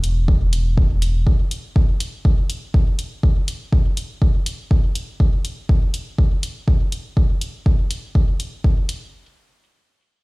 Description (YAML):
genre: dub techno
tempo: 122 BPM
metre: 4/4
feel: swing 54% on 16ths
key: unclear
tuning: A4 = 440 Hz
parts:
  - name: soft dub sub bass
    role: bass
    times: 0.0-1.2 s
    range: E1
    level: -18 LUFS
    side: equal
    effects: sidechain pumping
  - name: electronic hi-hat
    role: drums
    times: 0.0-9.0 s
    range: none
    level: -30 LUFS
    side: left 1 dB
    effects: none
  - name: electronic kick drum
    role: drums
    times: 0.3-8.7 s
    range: none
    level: -16 LUFS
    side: equal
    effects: none
room: little or no reverb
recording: played on a big sound system in a bare room, stone room reverb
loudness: -17 LUFS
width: side -24 dB against mid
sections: 0.0-9.1 A section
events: none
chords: none